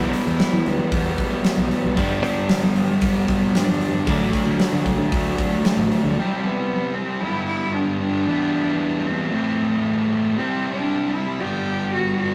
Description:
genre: quiet-loud alternative rock.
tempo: 114 BPM.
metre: 4/4.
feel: straight.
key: unclear.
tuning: A4 = 438 Hz.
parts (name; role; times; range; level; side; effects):
rich cello; melody; 0.0-12.3 s; F#3 to G4; -28 LUFS; equal; none.
crunchy overdriven guitar; riff; 0.0-6.2 s; E2 to D4; -26 LUFS; equal; none.
thick fuzz guitar; riff; 0.0-12.3 s; G2 to E4; -26 LUFS; equal; distortion.
picked electric bass; bass; 0.0-6.1 s; A1 to G3; -29 LUFS; equal; none.
huge arena drum kit; drums; 0.1-6.0 s; hi-hat, kick drum, snare drum; -26 LUFS; equal; none.
room: moderate stone room reverb, RT60 0.9 s.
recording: rough rehearsal-room recording, tube saturation.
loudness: -21 LUFS.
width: mono.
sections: 0.0-6.2 A section; 6.2-12.3 B section.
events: none.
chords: 0.0 Em; 2.0 G; 4.1 D; 6.2 C; 7.2 G; 8.3 Em; 9.3 Am; 10.4 C; 11.4 G.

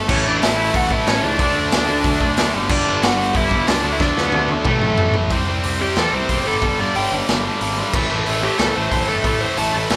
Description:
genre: punk rock.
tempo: 183 BPM.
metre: 4/4.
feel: straight.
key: unclear.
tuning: A4 = 436 Hz.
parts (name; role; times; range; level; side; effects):
tight distorted guitar; riff; 0.0-10.0 s; G2 to D4; -23 LUFS; equal; distortion.
fuzz picked electric bass; bass; 0.0-10.0 s; F#1 to E2; -28 LUFS; equal; overdrive.
bluesy overdriven lead guitar; melody; 0.1-9.7 s; A3 to A5; -24 LUFS; equal; distortion.
raw garage drum kit; drums; 0.1-10.0 s; crash cymbal, hi-hat, kick drum, snare drum, toms; -23 LUFS; equal; none.
room: light reverb.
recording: band playing live in one room.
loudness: -18 LUFS.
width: mono.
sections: 0.0-5.3 A section; 5.3-10.0 B section.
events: drum fill 4.0-5.3; half time 5.3-10.0; lead electric guitar solo 5.3-10.0.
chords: 0.1 A; 1.4 D5; 2.5 G5; 3.8 D5; 4.7 A5; 5.3 C5; 6.5 G5; 7.9 A5.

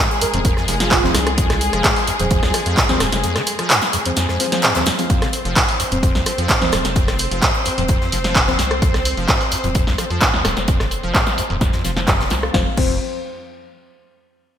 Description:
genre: acid house.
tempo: 129 BPM.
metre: 4/4.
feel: straight.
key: F phrygian.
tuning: A4 = 440 Hz.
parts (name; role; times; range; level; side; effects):
rich studio string section; sustained chords; 0.0-12.6 s; Ab3 to C5; -25 LUFS; left 1 dB; sidechain pumping.
acid bass, saw; riff; 0.0-13.0 s; Eb2 to F3; -25 LUFS; equal; tube saturation, ensemble chorus, sidechain pumping, ping-pong delay.
gated 80s drum kit; drums; 0.1-12.4 s; hi-hat, snare drum; -29 LUFS; left 2 dB; high-pass filter on hats, high-pass filter on snare, high-pass filter on room, gated reverb.
airy dreamy lead; melody; 0.2-1.3 s; F4 to Bb4; -26 LUFS; right 4 dB; chorus, digital delay.
punchy analog drum machine; drums; 0.2-12.9 s; crash cymbal, handclaps, hi-hat, rim click, snare drum; -19 LUFS; right 1 dB; low-pass filter on hats, low-pass filter on snare, low-pass filter on cymbals, low-pass filter on room, gated reverb.
deep mellow chord stab; stabs; 0.3-12.9 s; F3 to F5; -26 LUFS; left 2 dB; chorus, ping-pong delay.
round analog bass; bass; 0.3-13.0 s; Eb1 to F2; -24 LUFS; equal; sidechain pumping.
electronic kick drum; drums; 0.4-12.9 s; none; -20 LUFS; equal; none.
room: moderate lush hall reverb, RT60 2.2 s.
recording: bright 1980s-style digital production.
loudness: -15 LUFS.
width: side -9 dB against mid.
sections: 0.0-5.1 A section; 5.1-12.5 B section; 12.5-14.4 C section.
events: drop 0.0-5.1; drum fill 4.9; filter sweep on analog synth bass 5.1-12.5; filter sweep on synth stab 5.1-12.5.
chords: 0.0 F5.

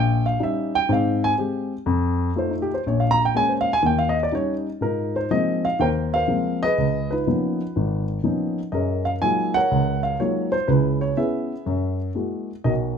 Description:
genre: solo jazz.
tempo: 122 BPM.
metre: 4/4.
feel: swing 67% on 8ths.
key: unclear.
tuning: A4 = 442 Hz.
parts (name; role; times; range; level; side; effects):
dark baby grand piano; solo; 0.0-13.0 s; Ab1 to Bb5; -20 LUFS; equal; none.
room: light reverb.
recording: minimal, uncompressed stereo recording.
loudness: -20 LUFS.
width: side -7 dB against mid.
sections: 0.0-4.8 A section; 4.8-13.0 B section.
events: grand piano solo 0.0-4.8.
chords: 0.0 Eb7; 0.9 Abmaj7; 1.9 F7; 2.8 Bbm7; 3.8 Eb7; 4.8 Ab69; 6.8 Db13; 8.7 Gbmaj13; 10.7 Dbm7; 11.7 Gb9.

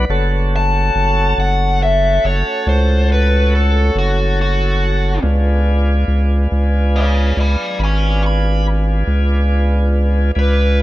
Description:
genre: slow blues.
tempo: 47 BPM (dotted quarters).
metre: 12/8.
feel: straight.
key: F# harmonic minor.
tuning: A4 = 440 Hz.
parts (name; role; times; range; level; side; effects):
tonewheel organ; sustained chords; 0.0-10.8 s; A3 to B4; -21 LUFS; equal; slow rotary speaker.
saturated sub bass; bass; 0.0-10.8 s; F#1 to C#2; -14 LUFS; equal; none.
dark smooth lead guitar; melody; 0.6-10.8 s; F#4 to C#6; -19 LUFS; left 2 dB; overdrive.
room: little or no reverb.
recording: rough home demo mix.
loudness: -13 LUFS.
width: side -16 dB against mid.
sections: 0.0-10.8 A section.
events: none.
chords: 0.1 F#m; 5.2 C#7b9.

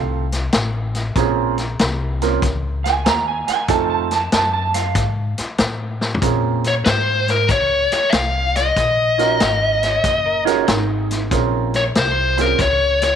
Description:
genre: electric blues shuffle.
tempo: 94 BPM.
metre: 4/4.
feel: swing 67% on 8ths.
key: Bb minor.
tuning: A4 = 442 Hz.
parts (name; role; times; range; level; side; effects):
electric guitar through a small old amp; second line; 0.0-5.1, 9.4-11.5 s; Eb4 to Bb5; -22 LUFS; right 6 dB; analog chorus.
warm upright piano; accompaniment; 0.0-12.6 s; A3 to C5; -22 LUFS; right 12 dB; none.
upright bass; bass; 0.0-13.2 s; Gb1 to Bb2; -23 LUFS; left 2 dB; none.
vintage drum kit; drums; 0.3-13.1 s; hi-hat, kick drum, snare drum, toms; -22 LUFS; left 2 dB; none.
smooth overdriven lead guitar; melody; 6.7-13.2 s; Bb4 to F5; -17 LUFS; left 2 dB; slapback echo.
room: moderate spring reverb, RT60 2.3 s.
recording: 1960s-style stereo.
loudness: -16 LUFS.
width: side -8 dB against mid.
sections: 0.0-6.2 A section; 6.2-13.2 B section.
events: clean electric guitar solo 0.0-6.2; drum fill 5.9-6.2.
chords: 0.0 F7; 1.2 Bbm9; 3.7 F7; 6.2 Bbm9; 8.8 Ebm9; 11.3 Bbm9.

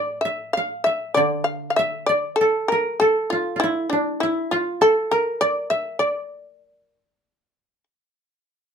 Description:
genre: japanese traditional, Japanese chamber music.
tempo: 49 BPM.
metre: 2/4.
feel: rubato.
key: D hirajoshi.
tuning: A4 = 440 Hz.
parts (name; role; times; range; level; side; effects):
shamisen; melody; 0.0-7.8 s; D4 to F5; -22 LUFS; left 2 dB; none.
koto; second line; 0.0-7.8 s; D4 to F5; -22 LUFS; right 2 dB; none.
koto; accompaniment; 0.0-4.5 s; A2 to D3; -28 LUFS; left 3 dB; none.
room: wet small room reverb, RT60 0.5 s.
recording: minimal, uncompressed stereo recording.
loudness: -19 LUFS.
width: side -7 dB against mid.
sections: 0.0-8.5 A section.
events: none.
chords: none.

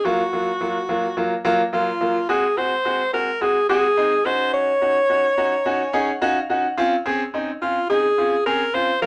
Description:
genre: pop.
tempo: 107 BPM.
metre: 4/4.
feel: straight.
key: Db major.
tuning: A4 = 440 Hz.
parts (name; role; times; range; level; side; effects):
bright alto saxophone; melody; 0.0-9.1 s; F4 to Db5; -22 LUFS; equal; none.
bright concert grand piano; accompaniment; 0.0-9.1 s; Gb3 to Bb5; -24 LUFS; equal; none.
room: moderate studio ambience, RT60 0.5 s.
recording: none.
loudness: -21 LUFS.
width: mono.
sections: 0.0-6.8 A section; 6.8-9.1 B section.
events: grand piano fill 5.1-6.8.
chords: 0.0 Gbmaj7; 2.3 Ab7; 4.3 Ebm7; 6.8 Dbmaj7.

